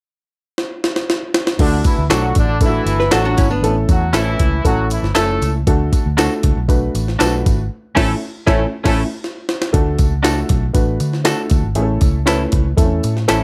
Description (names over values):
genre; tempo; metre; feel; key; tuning
uptempo 1960s-style soul; 118 BPM; 4/4; straight; D major; A4 = 440 Hz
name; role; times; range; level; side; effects
jungle sampler-style drum kit; drums; 0.6-13.4 s; crash cymbal, hi-hat, kick drum, snare drum; -20 LUFS; equal; none
clear horn section; second line; 1.6-9.0 s; D3 to A4; -24 LUFS; equal; none
warm upright piano; accompaniment; 1.6-13.4 s; A3 to B4; -23 LUFS; equal; none
vintage muted fingered electric bass; bass; 1.6-13.4 s; G1 to D3; -22 LUFS; equal; none
tambourine and handclaps; percussion; 1.6-13.4 s; none; -32 LUFS; equal; none
semi-hollow electric guitar; stabs; 2.1-13.4 s; C#4 to A4; -24 LUFS; equal; tremolo, slapback echo
archtop guitar, miked and amplified; riff; 3.0-3.8, 8.0-9.0 s; A3 to B4; -22 LUFS; equal; none
room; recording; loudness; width
light reverb; none; -16 LUFS; mono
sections
0.0-1.6 A section; 1.6-9.7 B section; 9.7-13.4 C section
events
drum fill 0.6-1.6, 9.2-9.7; band accent 7.7-9.7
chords
0.0 N.C.; 1.6 D; 3.6 A; 5.7 D; 7.7 A; 9.7 D; 11.8 A